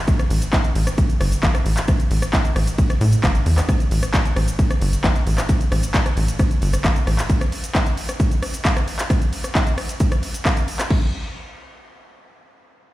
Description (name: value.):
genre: driving peak-time techno.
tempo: 133 BPM.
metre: 4/4.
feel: straight.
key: unclear.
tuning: A4 = 441 Hz.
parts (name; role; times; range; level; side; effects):
electronic kick drum; drums; 0.1-11.0 s; none; -19 LUFS; equal; overdrive, small room ambience.
techno drum kit; drums; 0.1-11.0 s; crash cymbal, handclaps, hi-hat, ride cymbal, rim click, shaker; -24 LUFS; equal; overdrive, small room ambience, sidechain pumping on hats, sidechain pumping on cymbals, sidechain pumping on perc.
tight sequencer bass; bass; 0.3-7.2 s; G1 to A2; -19 LUFS; equal; tube saturation, sidechain pumping.
room: digital ambience.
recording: played on a big sound system in a bare room, large studio reverb.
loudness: -17 LUFS.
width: side -16 dB against mid.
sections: 0.0-10.9 A section; 10.9-12.9 B section.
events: drop 0.0-10.9.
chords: none.